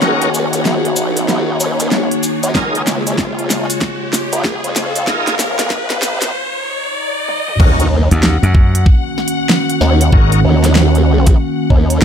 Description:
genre	glitch hop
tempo	95 BPM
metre	4/4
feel	swing 63% on 16ths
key	Eb minor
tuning	A4 = 440 Hz
part	warbly tape-like pad	sustained chords	0.0-12.0 s	Db3 to Gb4	-19 LUFS	equal	chorus, built-in reverb, sidechain pumping
part	bright tonewheel organ	stabs	0.0-10.4 s	Db4 to Bb4	-22 LUFS	left 1 dB	overdrive, chorus vibrato, slow rotary speaker, sidechain pumping, ping-pong delay
part	formant-sweep wobble bass	bass	0.0-12.0 s	Ab1 to Gb2	-16 LUFS	equal	chorus, high-pass filter
part	pop drum kit	drums	0.0-12.0 s	crash cymbal, hi-hat, snare drum, toms	-18 LUFS	right 1 dB	small room reverb
part	cabasa	percussion	0.0-6.3 s	none	-23 LUFS	left 3 dB	none
part	riser, swell and impact	sound effects	0.4-10.1 s	none	-22 LUFS	equal	none
part	rich studio string section	texture	0.0-12.0 s	Ab4 to Gb5	-24 LUFS	left 4 dB	sidechain pumping
part	electronic kick drum	drums	2.5-11.9 s	none	-11 LUFS	equal	small room reverb
part	slap bass	bass	8.1-12.0 s	Ab1 to Gb2	-12 LUFS	equal	none
room	light reverb, digital ambience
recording	high-pass filter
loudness	-12 LUFS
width	side -8 dB against mid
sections	0.0-7.6 A section; 7.6-12.0 B section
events	build-up 0.0-7.6; drum fill 0.0-6.3, 7.3-7.6; filter sweep 0.0-7.6; riser 0.4-7.6; break 6.3-7.6; swell 6.3-7.6; drop 7.6-12.0; impact 7.6-10.1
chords	0.0 Ebm7; 2.5 Db6; 7.6 Ebm7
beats	| 0.02 0.65 1.28 1.92 | 2.55 3.18 3.81 4.44 | 5.08 5.71 6.34 6.97 | 7.60 8.23 8.86 9.50 | 10.13 10.76 11.39 12.02

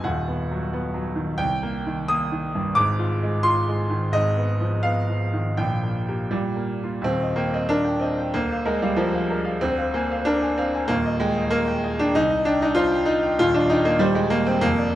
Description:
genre	classical, romantic character piece for solo piano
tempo	79-97 BPM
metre	2/4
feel	rubato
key	Eb major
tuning	A4 = 440 Hz
part	bright grand piano	solo	0.0-15.0 s	D#1 to Eb6	-20 LUFS	equal	none
room	moderate recital hall reverb, RT60 1.7 s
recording	dark, warm production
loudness	-20 LUFS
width	side -13 dB against mid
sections	0.0-7.0 A section; 7.0-15.0 B section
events	none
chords	0.1 B/D#; 1.4 Cm7; 2.8 Fm7/Ab; 4.1 Fm7b5/Ab; 5.6 Gm/Bb; 6.3 Bb5; 7.0 Eb; 8.3 Bb/D; 9.6 Bb7/D; 10.9 Eb; 12.1 Cm; 13.4 Cm/Eb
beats	| 0.07 0.73 | 1.39 2.10 | 2.76 3.43 | 4.12 4.83 | 5.56 6.32 | 7.04 7.69 | 8.33 8.97 | 9.61 10.25 | 10.88 11.51 | 12.13 12.75 | 13.38 14.00 | 14.63

